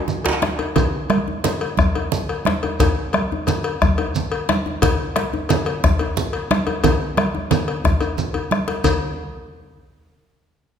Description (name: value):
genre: west african traditional, West African drum ensemble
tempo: 119 BPM (dotted quarters)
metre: 12/8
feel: straight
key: none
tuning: none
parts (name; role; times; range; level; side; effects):
- bombo; percussion; 0.1-9.0 s; none; -23 LUFS; left 2 dB; none
- congas; percussion; 0.1-9.0 s; none; -23 LUFS; right 6 dB; none
- shekere; percussion; 0.1-9.0 s; none; -30 LUFS; right 1 dB; none
- cowbell; percussion; 0.2-9.0 s; none; -25 LUFS; left 5 dB; none
- djembe; percussion; 0.3-9.0 s; none; -25 LUFS; left 4 dB; none
room: wet recital hall reverb, RT60 1.6 s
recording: minimal, uncompressed stereo recording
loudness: -18 LUFS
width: side -8 dB against mid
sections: 0.8-8.8 A section; 8.8-10.8 B section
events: speeding up 0.0-10.8; drum fill 8.3-8.8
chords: none